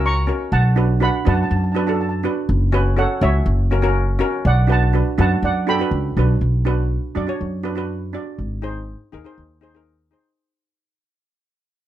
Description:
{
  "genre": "calypso",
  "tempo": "122 BPM",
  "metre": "4/4",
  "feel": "straight",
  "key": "B minor",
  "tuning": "A4 = 440 Hz",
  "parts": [
    { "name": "steel pan", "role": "melody", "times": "0.0-6.1 s", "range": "C#5 to C#6", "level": "-23 LUFS", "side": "right 3 dB", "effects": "none" },
    { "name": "steel pan", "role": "accompaniment", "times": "0.0-10.4 s", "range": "C#4 to D5", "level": "-23 LUFS", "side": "right 2 dB", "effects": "none" },
    { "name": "upright bass", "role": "bass", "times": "0.0-10.1 s", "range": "F#1 to F#2", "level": "-18 LUFS", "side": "equal", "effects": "none" }
  ],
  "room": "moderate studio reverb, RT60 0.6 s",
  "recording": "dark, warm production",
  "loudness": "-16 LUFS",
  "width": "side -12 dB against mid",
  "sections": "0.0-6.4 A section; 6.4-10.4 B section",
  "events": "fade-out 6.4-10.4",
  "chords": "0.0 F#; 0.5 Bm7; 2.5 F#sus4; 3.5 F#7; 4.4 Bm7; 6.4 Bm; 8.4 G#",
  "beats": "0.04 | 0.53 1.02 1.51 2.00 | 2.49 2.98 3.47 3.96 | 4.45 4.94 5.43 5.92 | 6.41 6.90 7.39 7.88 | 8.38 8.87 9.37 9.86"
}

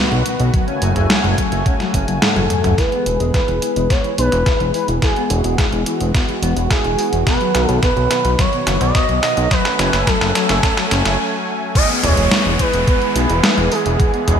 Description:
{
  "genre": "synthwave",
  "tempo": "107 BPM",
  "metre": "4/4",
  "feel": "straight",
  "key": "E major",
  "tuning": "A4 = 441 Hz",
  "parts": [
    { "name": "lush unison pad", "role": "sustained chords", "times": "0.0-14.4 s", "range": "C#3 to G#5", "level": "-23 LUFS", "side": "equal", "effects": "chorus, sidechain pumping" },
    { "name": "mellow electric guitar", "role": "riff", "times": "0.0-14.4 s", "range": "B2 to F#4", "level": "-26 LUFS", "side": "left 6 dB", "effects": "analog chorus, low-pass filter, ping-pong delay" },
    { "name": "fat analog bass", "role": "bass", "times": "0.1-14.4 s", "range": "E1 to B1", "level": "-18 LUFS", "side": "equal", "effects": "tube saturation, sidechain pumping" },
    { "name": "detuned 8-bit digital drum machine", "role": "drums", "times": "0.1-14.4 s", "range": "crash cymbal, hi-hat, snare drum, toms", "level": "-20 LUFS", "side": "equal", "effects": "high-pass filter on hats, high-pass filter on snare, high-pass filter on toms, high-pass filter on cymbals, high-pass filter on room, gated reverb" },
    { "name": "electronic kick drum", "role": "drums", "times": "0.5-14.1 s", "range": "none", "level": "-18 LUFS", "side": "equal", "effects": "none" },
    { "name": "expressive portamento lead", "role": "melody", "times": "2.2-14.3 s", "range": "G#4 to D#5", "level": "-20 LUFS", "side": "right 1 dB", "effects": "analog chorus, digital delay" },
    { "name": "downlifter", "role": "sound effects", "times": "11.8-14.4 s", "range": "none", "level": "-22 LUFS", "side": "left 1 dB", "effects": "none" }
  ],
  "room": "moderate lush hall reverb, RT60 2.7 s",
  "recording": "bright 1980s-style digital production",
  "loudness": "-14 LUFS",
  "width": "side -8 dB against mid",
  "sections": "0.0-2.8 A section; 2.8-11.8 B section; 11.8-14.4 C section",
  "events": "drum fill 2.2-2.8, 2.8-11.2; filter sweep on analog synth pad 2.8-11.8; break 11.2-11.8",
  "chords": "0.0 B; 0.5 F#madd9; 2.8 E; 7.3 B; 9.5 F#madd9; 11.8 E",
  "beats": "| 0.54 1.10 1.66 2.22 | 2.78 3.34 3.90 4.46 | 5.03 5.59 6.15 6.71 | 7.27 7.83 8.39 8.95 | 9.51 10.07 10.63 11.19 | 11.75 12.31 12.88 13.44 | 14.00"
}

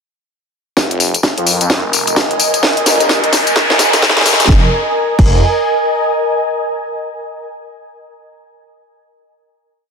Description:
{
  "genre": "bass house",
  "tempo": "129 BPM",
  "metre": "4/4",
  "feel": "swing 62% on 16ths",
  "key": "F minor",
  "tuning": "A4 = 440 Hz",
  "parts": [
    { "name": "phased detuned saw bass", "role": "bass", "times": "0.8-5.4 s", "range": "Eb1 to F2", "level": "-17 LUFS", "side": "equal", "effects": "phaser, tube saturation, sidechain pumping, high-pass filter" },
    { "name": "electronic kick drum", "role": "drums", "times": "0.8-5.3 s", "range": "none", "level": "-13 LUFS", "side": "equal", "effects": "high-pass filter on kick, high-pass filter on room" },
    { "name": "house drum kit", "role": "drums", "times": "0.8-5.3 s", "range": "crash cymbal, hi-hat, snare drum, tambourine", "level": "-14 LUFS", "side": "left 1 dB", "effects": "high-pass filter on snare, high-pass filter on perc, high-pass filter on hats, high-pass filter on cymbals, high-pass filter on room" },
    { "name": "riser", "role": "sound effects", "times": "1.9-4.5 s", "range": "none", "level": "-18 LUFS", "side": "left 2 dB", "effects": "none" },
    { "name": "granular cloud pad", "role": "texture", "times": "1.5-6.3 s", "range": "Bb4 to Ab5", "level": "-16 LUFS", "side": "equal", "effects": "built-in reverb, sidechain pumping" }
  ],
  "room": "moderate lush hall reverb, RT60 1.9 s",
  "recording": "high-pass filter",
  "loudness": "-11 LUFS",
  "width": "side -6 dB against mid",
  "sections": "0.8-4.5 build; 4.5-6.4 final chord",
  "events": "build-up 0.8-4.5; drum fill 0.8-4.5; riser 1.9-4.5",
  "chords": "0.8 Fmadd9; 4.5 Fm",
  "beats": "| 0.77 1.23 1.70 2.16 | 2.63 3.10 3.56 4.03 | 4.49 4.96 5.42 5.88"
}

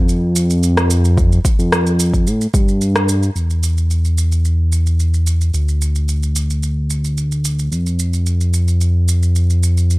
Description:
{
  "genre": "organic downtempo",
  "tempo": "110 BPM",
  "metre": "4/4",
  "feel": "straight",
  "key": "unclear",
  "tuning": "A4 = 439 Hz",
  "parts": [
    { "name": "smooth gliding synth bass", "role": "bass", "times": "0.0-10.0 s", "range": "D2 to A2", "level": "-14 LUFS", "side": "equal", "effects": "tube saturation, sidechain pumping" },
    { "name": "electronic shaker and rim click", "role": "drums", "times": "0.1-10.0 s", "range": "none", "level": "-21 LUFS", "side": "right 2 dB", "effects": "overdrive" },
    { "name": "electronic kick drum", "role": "drums", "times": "1.2-2.7 s", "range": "none", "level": "-15 LUFS", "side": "equal", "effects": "overdrive" }
  ],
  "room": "little or no reverb",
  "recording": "dry, gritty hardware recording",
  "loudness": "-14 LUFS",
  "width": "side -21 dB against mid",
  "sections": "0.0-3.4 A section; 3.4-10.0 B section",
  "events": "none",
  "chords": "none",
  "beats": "0.08 0.63 | 1.18 1.72 2.27 2.81 | 3.36 3.90 4.45 4.99 | 5.54 6.08 6.63 7.17 | 7.72 8.27 8.81 9.36 | 9.90"
}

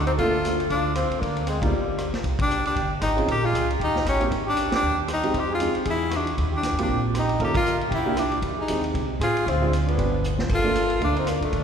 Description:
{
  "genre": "jazz, small-group swing and bop",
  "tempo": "233 BPM",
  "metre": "4/4",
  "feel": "swing 58% on 8ths",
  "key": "C minor",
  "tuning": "A4 = 439 Hz",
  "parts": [
    { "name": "bright tenor saxophone", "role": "melody", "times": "0.0-11.6 s", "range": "G3 to G4", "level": "-25 LUFS", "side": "left 2 dB", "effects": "none" },
    { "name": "dark trumpet", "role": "second line", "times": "0.0-11.6 s", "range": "Bb3 to C5", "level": "-29 LUFS", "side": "right 2 dB", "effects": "none" },
    { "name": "upright bass", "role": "bass", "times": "0.0-11.6 s", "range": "G1 to A2", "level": "-27 LUFS", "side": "equal", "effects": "none" },
    { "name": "vintage drum kit", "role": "drums", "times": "0.1-11.6 s", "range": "crash cymbal, hi-hat, kick drum, ride cymbal, rim click, snare drum", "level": "-31 LUFS", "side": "equal", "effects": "none" },
    { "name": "warm baby grand piano", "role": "accompaniment", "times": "0.2-11.1 s", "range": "G3 to A4", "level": "-30 LUFS", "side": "right 2 dB", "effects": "none" }
  ],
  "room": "wet church reverb, RT60 3.3 s",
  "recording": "recorded in a church or concert hall",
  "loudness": "-21 LUFS",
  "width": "side -7 dB against mid",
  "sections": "0.0-2.2 A section; 2.2-10.5 B section; 10.5-11.6 A section",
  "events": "band accent 1.6, 2.4, 4.7, 7.5; drum fill 10.2",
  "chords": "0.2 Gm9; 1.2 Bb9/D; 1.7 Gm; 2.2 Cmadd9; 3.3 Bbm7; 3.8 Eb; 4.3 Abmaj7(no3); 5.3 Fm7; 5.9 E; 6.4 Eb6; 7.4 Gm7b5; 7.9 C7; 8.4 Fm7; 9.5 Dm7b5; 10.0 G; 10.5 Gm9",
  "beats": "| 0.18 0.44 0.70 0.96 | 1.22 1.47 1.73 1.99 | 2.25 2.50 2.76 3.02 | 3.28 3.54 3.79 4.05 | 4.31 4.57 4.83 5.08 | 5.34 5.60 5.86 6.11 | 6.37 6.63 6.88 7.14 | 7.40 7.66 7.92 8.17 | 8.43 8.69 8.94 9.20 | 9.46 9.72 9.97 10.23 | 10.49 10.75 11.01 11.26 | 11.52"
}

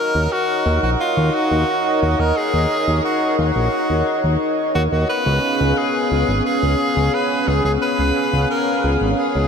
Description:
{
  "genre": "synthwave",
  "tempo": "88 BPM",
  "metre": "4/4",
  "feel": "straight",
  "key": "Eb minor",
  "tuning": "A4 = 442 Hz",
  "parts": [
    { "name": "breathy tenor saxophone", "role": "melody", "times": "0.0-9.5 s", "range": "F4 to Cb5", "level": "-20 LUFS", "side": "equal", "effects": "diffuse ambient delay" },
    { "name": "warm analog pad", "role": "sustained chords", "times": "0.0-9.5 s", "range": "Cb4 to F5", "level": "-20 LUFS", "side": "equal", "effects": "chorus" },
    { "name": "fat analog bass", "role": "bass", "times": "0.1-9.5 s", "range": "Ab1 to Eb2", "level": "-19 LUFS", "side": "equal", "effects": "tube saturation" }
  ],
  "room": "wet huge ambient reverb, RT60 7.7 s",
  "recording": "dreamy mix soaked in reverb",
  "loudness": "-16 LUFS",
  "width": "side -6 dB against mid",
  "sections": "0.0-9.5 A section",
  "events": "none",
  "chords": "0.0 Ebm7; 5.1 Db7",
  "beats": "0.32 1.00 1.68 | 2.37 3.05 3.73 4.41 | 5.09 5.78 6.46 7.14 | 7.82 8.50 9.18"
}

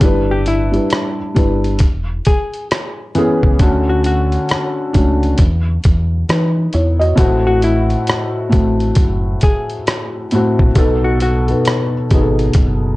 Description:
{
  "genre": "lo-fi hip hop",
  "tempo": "67 BPM",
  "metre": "4/4",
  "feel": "swing 63% on 16ths",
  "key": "unclear",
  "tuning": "A4 = 440 Hz",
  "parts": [
    { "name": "felt-muted upright piano", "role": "accompaniment", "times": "0.0-13.0 s", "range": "A2 to D#5", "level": "-16 LUFS", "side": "equal", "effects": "low-pass filter" },
    { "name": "deep dub fingered electric bass", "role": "bass", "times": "0.0-12.9 s", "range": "E1 to E3", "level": "-17 LUFS", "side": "equal", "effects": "none" },
    { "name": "dusty soul sampler-style drum kit", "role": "drums", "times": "0.0-12.8 s", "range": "hi-hat, kick drum, rim click", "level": "-15 LUFS", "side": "equal", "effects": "vintage 12-bit sampler grit" },
    { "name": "hollow-body jazz guitar", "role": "melody", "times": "0.3-12.8 s", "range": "E4 to G#4", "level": "-22 LUFS", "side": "left 2 dB", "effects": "low-pass filter, analog delay" }
  ],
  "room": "little or no reverb",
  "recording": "dry, gritty hardware recording, cassette tape",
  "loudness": "-13 LUFS",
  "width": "side -19 dB against mid",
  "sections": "0.0-7.2 A section; 7.2-13.0 B section",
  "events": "none",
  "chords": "0.0 G6; 1.8 E6; 3.6 Dmaj7; 5.4 C#m9/E; 7.2 Am6; 10.8 B7",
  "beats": "| 0.01 0.91 1.81 2.70 | 3.60 4.49 5.39 6.28 | 7.18 8.07 8.97 9.87 | 10.76 11.66 12.55"
}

